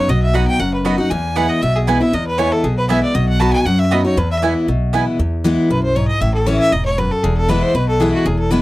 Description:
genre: bluegrass.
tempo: 235 BPM.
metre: 4/4.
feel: straight.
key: E major.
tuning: A4 = 440 Hz.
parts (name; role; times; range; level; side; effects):
clear fiddle; melody; 0.0-8.6 s; F#4 to A5; -20 LUFS; equal; none.
picked steel-string acoustic guitar; accompaniment; 0.0-8.6 s; E2 to F#4; -18 LUFS; left 1 dB; none.
upright bass; bass; 0.1-8.6 s; E1 to F#2; -19 LUFS; equal; none.
mandolin; stabs; 0.3-5.0 s; B3 to B5; -20 LUFS; right 6 dB; none.
room: light reverb.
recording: dry, close 1970s-style studio recording.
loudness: -14 LUFS.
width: side -17 dB against mid.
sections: 0.0-5.2 A section; 5.2-8.6 B section.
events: fiddle solo 5.2-8.6.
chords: 0.0 B; 1.1 E; 3.2 B; 4.2 E; 6.2 A; 7.2 E.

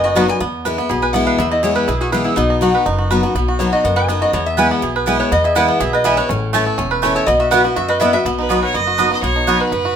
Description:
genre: bluegrass.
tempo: 245 BPM.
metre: 4/4.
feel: straight.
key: B mixolydian.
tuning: A4 = 436 Hz.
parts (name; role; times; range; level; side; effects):
lap resonator guitar; second line; 0.0-8.2 s; D#4 to B5; -18 LUFS; left 1 dB; none.
picked steel-string acoustic guitar; accompaniment; 0.0-10.0 s; E2 to F#4; -19 LUFS; left 4 dB; none.
bluegrass banjo; arpeggios; 0.0-10.0 s; B3 to B4; -20 LUFS; right 5 dB; none.
upright bass; bass; 0.0-10.0 s; E1 to F#2; -23 LUFS; equal; none.
mandolin; stabs; 0.2-0.3, 4.6-9.6 s; A3 to B5; -18 LUFS; right 6 dB; none.
clear fiddle; melody; 8.4-10.0 s; B4 to D#5; -18 LUFS; right 3 dB; none.
room: moderate studio ambience, RT60 0.5 s.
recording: minimal, uncompressed stereo recording.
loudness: -14 LUFS.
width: side -8 dB against mid.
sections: 0.4-8.3 A section; 8.3-10.0 B section.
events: resonator guitar played with a steel bar solo 0.0-8.3.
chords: 0.4 E; 2.4 B; 4.3 E; 6.3 A; 7.3 Bsus4; 8.3 B.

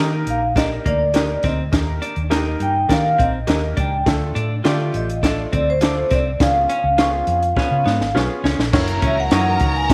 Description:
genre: uptempo 1960s-style soul.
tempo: 103 BPM.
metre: 4/4.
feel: straight.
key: unclear.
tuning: A4 = 440 Hz.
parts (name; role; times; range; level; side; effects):
clear upright piano; accompaniment; 0.0-9.9 s; Db3 to C#5; -30 LUFS; equal; none.
vintage hollow-body jazz guitar; riff; 0.0-9.9 s; Bb3 to F4; -30 LUFS; equal; none.
electric guitar through a small old amp; stabs; 0.0-9.4 s; E4 to Eb5; -33 LUFS; equal; none.
vintage muted fingered electric bass; bass; 0.0-9.9 s; F#1 to Eb3; -25 LUFS; equal; none.
vibraphone with medium mallets; melody; 0.3-9.9 s; C5 to G#5; -22 LUFS; equal; none.
compact cocktail drum kit; drums; 0.3-9.9 s; crash cymbal, hi-hat, kick drum, snare drum; -22 LUFS; equal; none.
warm studio violin section; second line; 8.7-9.9 s; A#4 to A#5; -27 LUFS; equal; none.
percussive tonewheel organ; sustained chords; 8.7-9.9 s; E3 to C#4; -32 LUFS; equal; none.
room: light reverb, studio reverb.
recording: none.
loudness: -19 LUFS.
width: mono.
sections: 0.0-8.7 A section; 8.7-9.9 B section.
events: drum fill 7.6-8.7.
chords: 0.0 Eb; 4.1 Dm; 6.4 Db7; 8.7 F#7.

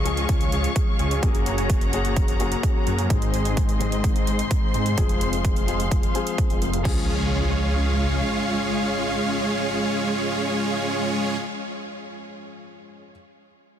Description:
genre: EDM, festival progressive house.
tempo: 128 BPM.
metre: 4/4.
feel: straight.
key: Db major.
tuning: A4 = 440 Hz.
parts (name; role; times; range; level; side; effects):
felt-muted upright piano; accompaniment; 0.0-13.1 s; Ab2 to Ab4; -30 LUFS; left 6 dB; sidechain pumping, digital delay.
dark symphonic string section; sustained chords; 0.0-11.4 s; Ab3 to Db6; -30 LUFS; equal; sidechain pumping.
dense compressed supersaw; riff; 0.0-11.4 s; Ab3 to Eb5; -26 LUFS; right 1 dB; sidechain pumping, low-pass filter, digital delay.
detuned saw bass; bass; 0.0-8.2 s; F1 to Ab2; -26 LUFS; equal; sidechain pumping.
house drum kit; drums; 0.1-6.9 s; crash cymbal, hi-hat; -35 LUFS; right 4 dB; none.
electronic kick drum; drums; 0.3-6.9 s; none; -22 LUFS; equal; overdrive.
impact; sound effects; 6.9-11.5 s; none; -34 LUFS; right 2 dB; none.
room: light reverb, digital ambience.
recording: dense, heavily limited modern master.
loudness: -20 LUFS.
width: side -10 dB against mid.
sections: 0.0-6.9 A section; 6.9-10.6 B section.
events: filter sweep on supersaw synth 0.0-6.9.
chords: 0.0 Db; 1.2 Gbadd9; 3.1 Ab; 5.0 Fm; 6.9 Db.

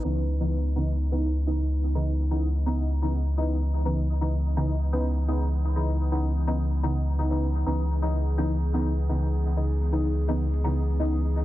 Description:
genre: techno.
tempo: 126 BPM.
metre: 4/4.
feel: straight.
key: C# minor.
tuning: A4 = 443 Hz.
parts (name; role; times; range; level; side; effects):
warbly tape-like pad; sustained chords; 0.0-11.4 s; E3 to G#4; -36 LUFS; left 1 dB; chorus, built-in reverb, vintage 12-bit sampler grit.
deep mellow chord stab; stabs; 0.0-11.2 s; C#3 to D#4; -29 LUFS; equal; chorus, phaser, dub echo.
pure sine sub bass; bass; 0.0-11.4 s; C#2; -24 LUFS; equal; none.
room: light reverb.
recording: dense, heavily limited modern master, vinyl crackle, low-pass filter.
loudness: -23 LUFS.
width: side -15 dB against mid.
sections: 0.0-11.4 A section.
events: filter sweep 0.0-11.4.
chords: 0.0 C#m9.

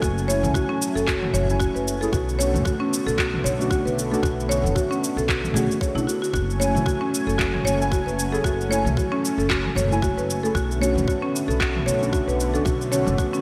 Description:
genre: organic downtempo.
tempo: 114 BPM.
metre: 4/4.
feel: swing 56% on 16ths.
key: F# minor.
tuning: A4 = 442 Hz.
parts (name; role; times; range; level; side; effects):
warm analog pad; sustained chords; 0.0-13.4 s; D3 to G#5; -32 LUFS; equal; chorus, sidechain pumping, shimmer reverb.
buzzing marimba with medium mallets; arpeggios; 0.0-13.4 s; C#4 to C#5; -27 LUFS; equal; digital delay, shimmer reverb.
upright bass; bass; 0.0-13.1 s; F#1 to C#2; -29 LUFS; equal; sidechain pumping.
electronic kick drum; drums; 0.0-13.3 s; none; -28 LUFS; equal; none.
organic electronic drum kit; drums; 0.0-13.4 s; cabasa, handclaps, toms; -31 LUFS; equal; gated reverb.
deep mellow chord stab; accompaniment; 0.3-13.4 s; D3 to G#5; -31 LUFS; equal; chorus, sidechain pumping, digital delay, shimmer reverb.
room: moderate lush hall reverb, RT60 2.0 s.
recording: bright 1980s-style digital production.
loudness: -23 LUFS.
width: mono.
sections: 0.0-13.4 A section.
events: none.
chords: 0.0 F#m7; 2.1 Bm9; 6.3 F#m7; 10.6 Bm9.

